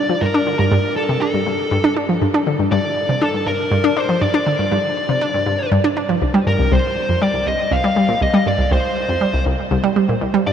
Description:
ambient; 120 BPM; 4/4; straight; C minor from 6.2 s; A4 = 440 Hz
fuzz lead guitar; melody; 0.0-10.5 s; A4 to F5; -20 LUFS; equal; distortion, shimmer reverb, analog delay
analog pluck; riff; 0.0-10.5 s; C2 to D4; -17 LUFS; equal; chorus, shimmer reverb, analog delay
wet huge ambient reverb, RT60 8.0 s; cassette tape; -15 LUFS; side -8 dB against mid
0.0-6.2 A section; 6.2-10.5 B section
filter sweep on synth arpeggio sound 0.0-6.2
0.0 Gm; 6.2 C5
| 0.22 0.72 1.22 1.72 | 2.22 2.72 3.22 3.72 | 4.22 4.72 5.22 5.72 | 6.22 6.72 7.22 7.72 | 8.22 8.72 9.22 9.72 | 10.22

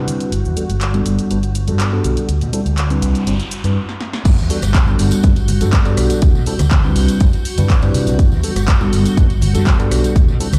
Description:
filtered disco house; 122 BPM; 4/4; straight; G major; A4 = 440 Hz
tine electric piano; accompaniment; 0.0-10.5 s; G3 to C5; -23 LUFS; equal; phaser, sidechain pumping, low-pass filter
string machine, full ensemble; sustained chords; 0.0-10.6 s; F#4 to G6; -32 LUFS; equal; ensemble chorus, sidechain pumping, low-pass filter
overdriven fingered electric bass; bass; 0.0-10.6 s; G1 to C3; -19 LUFS; equal; sidechain pumping, low-pass filter
punchy analog drum machine; drums; 0.1-10.6 s; crash cymbal, handclaps, hi-hat, rim click, shaker, snare drum; -28 LUFS; equal; sidechain pumping on hats, sidechain pumping on perc, sidechain pumping on cymbals
congas and tambourine; percussion; 0.1-10.6 s; -28 LUFS; equal; sidechain pumping on perc, low-pass filter on perc
noise sweep; sound effects; 2.6-4.3 s; -35 LUFS; equal
electronic kick drum; drums; 4.3-10.3 s; -15 LUFS; equal; overdrive
digital ambience; played on a big sound system in a bare room, large studio reverb; -15 LUFS; mono
0.0-4.3 A section; 4.3-10.6 B section
filter sweep 0.0-4.3; noise sweep 2.6-4.3; stop 3.8-4.3; drum fill 3.9-4.3; drop 4.3-10.6
0.3 Gmaj7; 2.3 D7sus4; 3.0 Cmaj9; 4.3 Gmaj7; 6.2 D7sus4; 7.0 Cmaj9; 8.2 Gmaj7
| 0.32 0.81 1.30 1.80 | 2.29 2.78 3.27 3.76 | 4.26 4.75 5.24 5.73 | 6.22 6.71 7.21 7.70 | 8.19 8.68 9.17 9.67 | 10.16

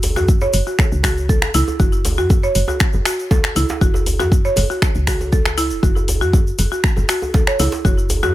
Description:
afro house; 119 BPM; 4/4; straight; F# minor; A4 = 438 Hz
woody FM bass; bass; 0.0-8.3 s; E1 to F#2; -20 LUFS; equal; sidechain pumping
deep house drum kit; drums; 0.0-8.2 s; finger snaps, hi-hat; -22 LUFS; equal
djembe; percussion; 0.0-8.3 s; -26 LUFS; right 1 dB
egg shaker; percussion; 0.0-8.3 s; -30 LUFS; left 3 dB
buzzing marimba with medium hard mallets; arpeggios; 0.2-8.3 s; E4 to C#5; -21 LUFS; right 1 dB; sidechain pumping, low-pass filter, tape echo
electronic kick drum; drums; 0.3-8.0 s; -16 LUFS; equal
studio ambience; -14 LUFS; side -15 dB against mid
0.0-8.3 A section
0.0 F#5
0.28 0.79 1.29 | 1.80 2.30 2.81 3.31 | 3.81 4.32 4.82 5.33 | 5.83 6.33 6.84 7.34 | 7.85

